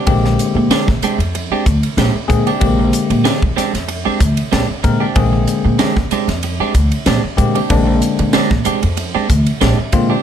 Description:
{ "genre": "electric jazz fusion", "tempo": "94 BPM", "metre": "4/4", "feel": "swing 54% on 16ths", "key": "Bb mixolydian", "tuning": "A4 = 439 Hz", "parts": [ { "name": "clean electric guitar", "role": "stabs", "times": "0.0-10.2 s", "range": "Ab3 to G4", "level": "-19 LUFS", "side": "right 6 dB", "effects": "wide subtle chorus" }, { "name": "bell-like tine electric piano", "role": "accompaniment", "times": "0.1-10.1 s", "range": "D3 to Bb4", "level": "-17 LUFS", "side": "left 5 dB", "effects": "none" }, { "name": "upright bass", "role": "bass", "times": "0.1-10.1 s", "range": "Bb1 to Bb2", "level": "-17 LUFS", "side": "right 1 dB", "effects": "none" }, { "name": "crisp fusion drum kit", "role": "drums", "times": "0.1-10.1 s", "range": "hi-hat, kick drum, ride cymbal, snare drum", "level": "-19 LUFS", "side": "equal", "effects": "none" } ], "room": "light reverb", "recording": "none", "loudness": "-13 LUFS", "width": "side -9 dB against mid", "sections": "0.0-10.2 A section", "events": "none", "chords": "0.0 Bb13" }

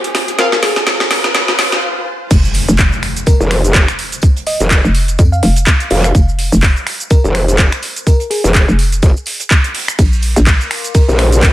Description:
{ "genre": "bass house", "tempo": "125 BPM", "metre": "4/4", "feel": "swing 57% on 16ths", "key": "F dorian", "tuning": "A4 = 440 Hz", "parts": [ { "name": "garage drum kit", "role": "drums", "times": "0.0-11.5 s", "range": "crash cymbal, finger snaps, handclaps, hi-hat, ride cymbal, shaker, snare drum", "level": "-16 LUFS", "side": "equal", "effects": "overdrive" }, { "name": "riser, swell and impact", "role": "sound effects", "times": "0.0-4.2 s", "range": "none", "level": "-22 LUFS", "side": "equal", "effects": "none" }, { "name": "warbly tape-like pad", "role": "texture", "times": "0.0-1.8, 10.3-11.5 s", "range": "F4 to D6", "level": "-30 LUFS", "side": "left 1 dB", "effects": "none" }, { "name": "bell-like FM electric piano", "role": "melody", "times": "0.4-11.4 s", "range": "Ab4 to F5", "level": "-21 LUFS", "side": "left 1 dB", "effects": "chorus, diffuse ambient delay" }, { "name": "clear horn section", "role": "stabs", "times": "0.4-0.5 s", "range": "C4 to F5", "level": "-21 LUFS", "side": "right 1 dB", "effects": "sidechain pumping, diffuse ambient delay" }, { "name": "hollow knocking FM bass", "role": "bass", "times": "2.3-10.6 s", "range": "F1 to F2", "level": "-12 LUFS", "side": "equal", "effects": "overdrive, sidechain pumping" }, { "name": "electronic kick drum", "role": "drums", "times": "2.3-11.5 s", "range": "none", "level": "-10 LUFS", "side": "equal", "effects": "none" }, { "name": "modern studio drum kit", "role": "drums", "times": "2.3-11.5 s", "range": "hi-hat, snare drum, tambourine", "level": "-30 LUFS", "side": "right 1 dB", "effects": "none" }, { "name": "growl bass", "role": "bass", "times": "3.4-11.5 s", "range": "F1 to Bb1", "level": "-12 LUFS", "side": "equal", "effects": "chorus, tube saturation, sidechain pumping" } ], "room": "light reverb, small room ambience", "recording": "high-pass filter", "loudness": "-10 LUFS", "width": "side -15 dB against mid", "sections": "0.0-2.3 A section; 2.3-11.5 B section", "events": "build-up 0.0-2.3; drum fill 0.0-1.8; riser 0.0-1.8; filter sweep on horn section 0.0-2.3; swell 1.3-2.3; stop 1.8-2.3; drop 2.3-11.5; impact 2.3-4.2", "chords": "0.0 Fm; 2.3 N.C.; 10.0 Bb" }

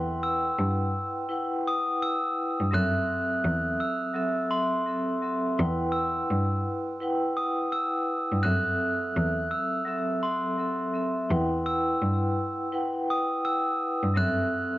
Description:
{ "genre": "hip hop, boom-bap hip-hop", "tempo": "84 BPM", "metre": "4/4", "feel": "swing 63% on 16ths", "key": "E minor", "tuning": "A4 = 439 Hz", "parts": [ { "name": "vibraphone with medium hard mallets", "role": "accompaniment", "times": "0.0-14.8 s", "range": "F#3 to G5", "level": "-28 LUFS", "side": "equal", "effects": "high-pass filter, low-pass filter, cassette tape" }, { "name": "rich cello", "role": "bass", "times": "0.0-14.7 s", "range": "E2 to G2", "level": "-28 LUFS", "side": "equal", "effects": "none" }, { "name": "glockenspiel with hard plastic mallets", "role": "melody", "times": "0.2-14.8 s", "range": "C6 to F#6", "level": "-29 LUFS", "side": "equal", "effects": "high-pass filter, low-pass filter, cassette tape" } ], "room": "light reverb, small room reverb", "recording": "home recording on cassette", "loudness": "-25 LUFS", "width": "side -16 dB against mid", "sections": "0.0-14.8 A section", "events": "none", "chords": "0.0 Emadd9; 2.7 F#m7b5; 5.6 Emadd9; 8.4 F#m7b5; 11.3 Emadd9; 14.2 F#m7b5" }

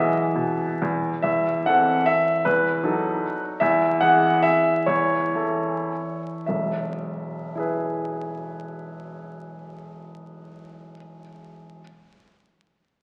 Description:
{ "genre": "classical, romantic triple-time dance for piano with dotted rhythms", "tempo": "96-165 BPM", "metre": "3/4", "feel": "rubato", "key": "E major", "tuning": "A4 = 440 Hz", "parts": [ { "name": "clear baby grand piano", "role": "solo", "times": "0.0-11.8 s", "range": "E1 to F#5", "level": "-24 LUFS", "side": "equal", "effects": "none" } ], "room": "wet scoring stage reverb, RT60 1.7 s", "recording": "very old 78 rpm record, vinyl crackle", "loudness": "-23 LUFS", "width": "mono", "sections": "0.0-1.2 A section; 1.2-6.5 B section; 6.5-9.7 C section", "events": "slowing down 3.0-6.5", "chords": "0.0 E; 1.2 Am/E; 2.5 B7/E; 3.6 E; 4.9 A/E; 6.5 E" }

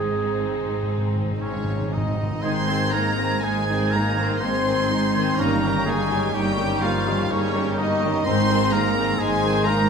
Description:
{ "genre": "classical", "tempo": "56-65 BPM", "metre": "3/4", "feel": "rubato", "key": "Ab major", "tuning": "A4 = 440 Hz", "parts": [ { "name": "warm chamber violin section", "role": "melody", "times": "0.0-9.9 s", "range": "Ab4 to C6", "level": "-29 LUFS", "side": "equal", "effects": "none" }, { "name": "warm clarinet", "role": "second line", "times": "0.0-9.9 s", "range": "Eb4 to Ab4", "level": "-30 LUFS", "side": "right 4 dB", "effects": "none" }, { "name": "warm studio violin section", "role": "second line", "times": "0.0-9.9 s", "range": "C4 to Ab4", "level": "-33 LUFS", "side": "left 2 dB", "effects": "none" }, { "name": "warm studio viola section", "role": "accompaniment", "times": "0.0-9.9 s", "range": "Eb3 to C4", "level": "-29 LUFS", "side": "right 2 dB", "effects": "none" }, { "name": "concert harp", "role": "arpeggios", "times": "0.0-9.9 s", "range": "G2 to Bb5", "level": "-31 LUFS", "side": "left 6 dB", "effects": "none" }, { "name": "warm chamber cello section", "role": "bass", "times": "0.0-9.9 s", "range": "G2 to Ab2", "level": "-28 LUFS", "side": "right 3 dB", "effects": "none" }, { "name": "warm chamber double bass section", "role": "bass", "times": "0.0-9.9 s", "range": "G1 to Ab1", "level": "-30 LUFS", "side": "right 2 dB", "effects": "none" }, { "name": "timpani", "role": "percussion", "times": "0.0-2.4 s", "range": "Ab2", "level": "-30 LUFS", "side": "equal", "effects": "none" }, { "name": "warm oboe", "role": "second line", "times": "1.4-9.9 s", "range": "Db4 to C5", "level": "-30 LUFS", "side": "right 1 dB", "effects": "none" }, { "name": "mellow French horn section", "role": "sustained chords", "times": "1.4-9.9 s", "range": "Db3 to C4", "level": "-28 LUFS", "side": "left 5 dB", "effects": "none" }, { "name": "flute section", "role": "second line", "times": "2.4-9.9 s", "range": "C6 to Ab6", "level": "-30 LUFS", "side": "equal", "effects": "none" }, { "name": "warm trombone section", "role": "sustained chords", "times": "2.4-8.6 s", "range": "Eb3 to Eb4", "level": "-30 LUFS", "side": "right 5 dB", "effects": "none" } ], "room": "wet scoring stage reverb, RT60 1.6 s", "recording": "none", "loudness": "-20 LUFS", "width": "side -6 dB against mid", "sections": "0.0-2.4 A section; 2.4-9.9 B section", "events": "timpani fill 0.0-2.4", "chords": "0.0 Ab; 5.4 Eb7/G; 8.3 Ab" }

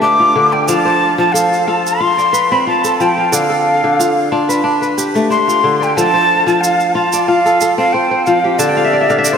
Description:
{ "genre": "west african traditional, West African string and xylophone music", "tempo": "91 BPM", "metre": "4/4", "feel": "swing 53% on 16ths", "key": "F lydian", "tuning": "A4 = 441 Hz", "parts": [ { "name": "breathy mellow jazz flute", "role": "melody", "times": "0.0-9.4 s", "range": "D5 to D6", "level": "-13 LUFS", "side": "right 1 dB", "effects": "none" }, { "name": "kora", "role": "arpeggios", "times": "0.0-9.4 s", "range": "D3 to A5", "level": "-14 LUFS", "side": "left 2 dB", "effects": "none" }, { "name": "tube shaker", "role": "percussion", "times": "0.7-9.4 s", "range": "none", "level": "-25 LUFS", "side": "right 6 dB", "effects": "none" } ], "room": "wet lush hall reverb, RT60 2.7 s", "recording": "dreamy mix soaked in reverb", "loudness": "-11 LUFS", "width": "side -7 dB against mid", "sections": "0.0-6.0 A section; 6.0-9.4 A section", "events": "kora fill 8.6-9.4", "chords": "0.0 Dm; 0.7 F; 3.3 Dm; 6.0 F; 8.6 D5" }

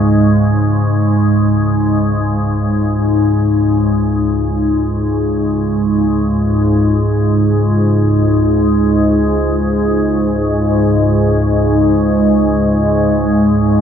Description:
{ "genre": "ambient", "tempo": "free time", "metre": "none", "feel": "none", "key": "unclear", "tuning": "A4 = 440 Hz", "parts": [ { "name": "organ-like drone", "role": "solo", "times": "0.0-13.8 s", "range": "C#2 to G#2", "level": "-11 LUFS", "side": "equal", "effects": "ensemble chorus, built-in reverb, ping-pong delay" } ], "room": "wet huge ambient reverb, RT60 8.2 s", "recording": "none", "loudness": "-11 LUFS", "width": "side -8 dB against mid", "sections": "0.0-4.0 A section; 4.0-13.8 B section", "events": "none", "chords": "0.0 C#5" }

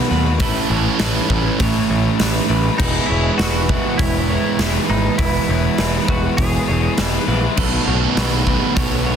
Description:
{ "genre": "rock, shoegaze and dream pop", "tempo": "100 BPM", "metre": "4/4", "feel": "straight", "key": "E major", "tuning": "A4 = 440 Hz", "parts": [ { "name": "electric guitar through a small old amp", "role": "arpeggios", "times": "0.0-9.2 s", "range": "B4 to C#5", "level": "-27 LUFS", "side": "right 5 dB", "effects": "wide subtle chorus, digital delay" }, { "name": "biting overdriven guitar", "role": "riff", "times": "0.0-9.2 s", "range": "A2 to A4", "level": "-21 LUFS", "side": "right 10 dB", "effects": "reverse reverb" }, { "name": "crunchy overdriven guitar", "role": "riff", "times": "0.0-9.2 s", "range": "E2 to F#4", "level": "-23 LUFS", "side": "left 12 dB", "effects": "wide subtle chorus" }, { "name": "growling picked electric bass", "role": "bass", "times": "0.1-9.1 s", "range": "E1 to D#2", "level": "-21 LUFS", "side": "left 1 dB", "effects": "overdrive" }, { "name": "huge arena drum kit", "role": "drums", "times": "0.4-8.9 s", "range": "crash cymbal, hi-hat, kick drum, snare drum", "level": "-21 LUFS", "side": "equal", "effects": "none" }, { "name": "direct-recorded clean electric guitar", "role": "melody", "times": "2.8-6.9 s", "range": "D#4 to G#4", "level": "-26 LUFS", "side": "left 1 dB", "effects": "analog chorus, digital delay" } ], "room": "light reverb, small room ambience", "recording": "dense, heavily limited modern master", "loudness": "-15 LUFS", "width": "side -8 dB against mid", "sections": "0.0-9.2 A section", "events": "none", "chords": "0.4 A; 2.8 E; 7.6 B7" }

